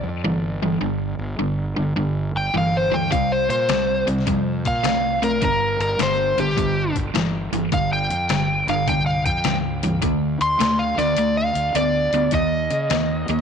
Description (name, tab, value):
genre	blues rock power trio and southern rock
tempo	104 BPM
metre	4/4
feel	swing 66% on 8ths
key	G minor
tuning	A4 = 443 Hz
part	crunchy overdriven guitar	riff	0.0-13.4 s	G2 to B3	-22 LUFS	equal	none
part	fuzz fingered electric bass	bass	0.0-13.4 s	G1 to Db3	-28 LUFS	equal	overdrive
part	overdriven slide guitar	melody	2.4-13.4 s	G4 to C6	-22 LUFS	equal	tape echo
part	trip hop sampler-style drum kit	drums	3.1-13.4 s	hi-hat, kick drum, snare drum	-27 LUFS	left 5 dB	none
room	moderate spring reverb, RT60 2.0 s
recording	1960s-style stereo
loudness	-18 LUFS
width	side -7 dB against mid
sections	0.0-13.4 A section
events	kick and snare drop out 11.2-12.3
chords	0.0 G5; 3.1 C5; 5.4 G5; 10.0 D5; 12.3 Eb7(no3)